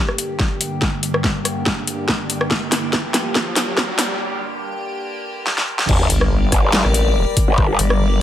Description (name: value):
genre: heavy wobble dubstep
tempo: 142 BPM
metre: 4/4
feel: swing 53% on 16ths, half-time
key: G minor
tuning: A4 = 441 Hz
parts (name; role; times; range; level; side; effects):
- evolving wavetable pad; sustained chords; 0.0-8.2 s; G2 to D5; -24 LUFS; left 1 dB; phaser, built-in reverb, sidechain pumping
- riser and sub drop; sound effects; 1.4-7.6 s; none; -28 LUFS; equal; none
- dubstep drum kit; drums; 0.1-8.0 s; crash cymbal, hi-hat, rim click, snare drum; -20 LUFS; equal; none
- electronic kick drum; drums; 0.4-7.7 s; none; -20 LUFS; equal; overdrive
- growl bass; bass; 5.9-7.8 s; G1; -17 LUFS; equal; chorus, overdrive
- vowel-sweep wobble bass; bass; 6.1-8.2 s; G1 to A1; -17 LUFS; equal; chorus, overdrive
room: light reverb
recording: high-pass filter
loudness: -16 LUFS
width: side -11 dB against mid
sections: 0.0-5.9 A section; 5.9-8.2 B section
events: build-up 0.0-5.9; drum fill 0.0-4.2, 5.5-5.9; filter sweep on ambient pad 0.0-5.9; filter sweep 0.0-5.9; riser 1.4-4.2; break 4.2-5.9; drop 5.9-8.2; impact 5.9-7.6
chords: 0.0 Gm